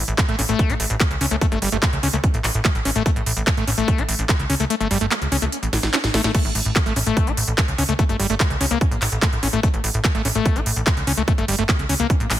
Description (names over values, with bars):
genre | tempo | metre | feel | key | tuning
psychedelic trance | 146 BPM | 4/4 | straight | unclear | A4 = 440 Hz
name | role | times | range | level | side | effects
plucky analog bass | bass | 0.0-12.4 s | G1 to C#2 | -23 LUFS | equal | none
techno drum kit | drums | 0.1-12.4 s | crash cymbal, handclaps, hi-hat, snare drum | -24 LUFS | right 1 dB | none
overdriven acid bass | riff | 0.2-12.1 s | G3 to E4 | -24 LUFS | moving between left 8 dB and right 3 dB | distortion, auto-pan, sidechain pumping, dub echo
electronic kick drum | drums | 0.2-12.2 s | none | -20 LUFS | equal | none
room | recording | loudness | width
digital ambience | dense, heavily limited modern master | -18 LUFS | side -12 dB against mid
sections
0.0-12.4 A section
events
kick drops out 4.7-6.3; drum fill 5.7-6.3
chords
0.0 A5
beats
0.18 0.59 1.00 | 1.42 1.83 2.24 2.65 | 3.06 3.47 3.88 4.29 | 4.70 5.11 5.52 5.93 | 6.35 6.76 7.17 7.58 | 7.99 8.40 8.81 9.22 | 9.63 10.04 10.46 10.87 | 11.28 11.69 12.10